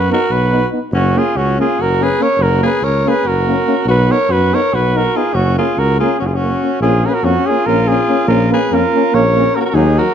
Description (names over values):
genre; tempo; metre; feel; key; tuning
balkan folk; 285 BPM (eighths); 7/8; straight; unclear; A4 = 436 Hz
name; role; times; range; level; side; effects
warm flugelhorn; melody; 0.0-10.1 s; F#4 to C#5; -16 LUFS; right 4 dB; none
growling alto saxophone; second line; 0.0-10.1 s; C#4 to A#4; -20 LUFS; left 4 dB; none
mellow tuba; bass; 0.0-10.0 s; F#1 to F#2; -17 LUFS; left 1 dB; none
clear euphonium; accompaniment; 0.1-10.1 s; F#3 to B3; -21 LUFS; right 7 dB; none
warm euphonium; accompaniment; 0.1-10.1 s; C#4 to D#4; -21 LUFS; left 10 dB; none
room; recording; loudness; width
moderate recital hall reverb, RT60 1.3 s; dark, warm production; -12 LUFS; side -8 dB against mid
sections
0.0-6.8 A section; 6.8-10.1 B section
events
none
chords
0.0 B; 0.9 F#; 3.9 B; 5.3 F#; 6.8 A#m